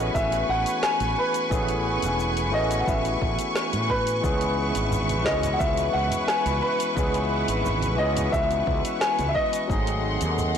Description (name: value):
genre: sunset chillout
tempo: 88 BPM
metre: 4/4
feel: straight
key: C# minor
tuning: A4 = 443 Hz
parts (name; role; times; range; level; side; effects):
- barky tine electric piano; accompaniment; 0.0-10.6 s; E3 to G#4; -29 LUFS; equal; auto-pan, ping-pong delay
- bright symphonic string section; sustained chords; 0.0-10.6 s; A3 to C#6; -29 LUFS; equal; none
- fretless electric bass; bass; 0.0-10.6 s; E1 to A2; -28 LUFS; right 1 dB; none
- warm grand piano; melody; 0.1-10.6 s; B4 to G#5; -26 LUFS; left 1 dB; ping-pong delay
- electronic kick drum; drums; 0.1-9.8 s; none; -29 LUFS; right 1 dB; none
- deep house drum kit; drums; 0.2-10.6 s; hi-hat, shaker, snare drum; -32 LUFS; right 1 dB; soft clipping on snare
- congas; percussion; 4.9-10.6 s; none; -34 LUFS; right 3 dB; none
room: moderate plate reverb, RT60 1.4 s, digital ambience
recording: blown-out, overdriven recording, overdrive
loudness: -22 LUFS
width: side -8 dB against mid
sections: 0.0-10.6 A section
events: none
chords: 0.0 Amaj9; 4.2 C#m7; 9.7 G#7b9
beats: 0.15 0.83 | 1.52 2.20 2.88 3.56 | 4.24 4.92 5.61 6.29 | 6.97 7.65 8.33 9.02 | 9.70 10.38